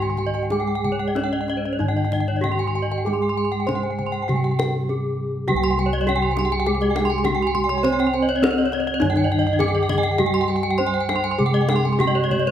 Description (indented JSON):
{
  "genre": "Balinese gamelan",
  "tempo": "91-102 BPM",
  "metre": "4/4",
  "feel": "straight",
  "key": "C pelog",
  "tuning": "A4 = 441 Hz",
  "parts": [
    { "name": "gamelan-type bronze metallophone", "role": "melody", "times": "0.0-12.5 s", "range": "C4 to C5", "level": "-24 LUFS", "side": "left 2 dB", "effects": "none" },
    { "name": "gamelan-type bronze metallophone", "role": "accompaniment", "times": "0.0-12.5 s", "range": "D3+50c to C4", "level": "-27 LUFS", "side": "right 3 dB", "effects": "none" },
    { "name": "gamelan-type bronze metallophone", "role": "arpeggios", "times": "0.0-12.5 s", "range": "C5 to C6", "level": "-26 LUFS", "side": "left 3 dB", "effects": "none" },
    { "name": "gamelan-type bossed gongs", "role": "bass", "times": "0.0-12.5 s", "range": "C2 to C5", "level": "-25 LUFS", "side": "equal", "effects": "none" },
    { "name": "gamelan-type bronze metallophone", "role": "arpeggios", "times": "0.1-12.5 s", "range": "C5 to C6", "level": "-28 LUFS", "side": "right 7 dB", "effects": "none" },
    { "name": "kendang", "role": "percussion", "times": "0.2-12.5 s", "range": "none", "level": "-30 LUFS", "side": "left 2 dB", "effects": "none" },
    { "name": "breathy mellow low xiao", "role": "second line", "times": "6.3-12.5 s", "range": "G4-49c to Eb5-38c", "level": "-31 LUFS", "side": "right 4 dB", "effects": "none" }
  ],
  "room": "light reverb",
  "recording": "close, detailed microphones",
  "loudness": "-19 LUFS",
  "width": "side -10 dB against mid",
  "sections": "0.0-5.5 A section; 5.5-12.5 B section",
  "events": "none",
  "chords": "none",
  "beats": "| 0.51 1.16 1.80 2.44 | 3.07 3.68 4.29 4.89 | 5.49 6.08 6.66 7.25 | 7.84 8.43 9.02 9.61 | 10.20 10.79 11.39 12.00"
}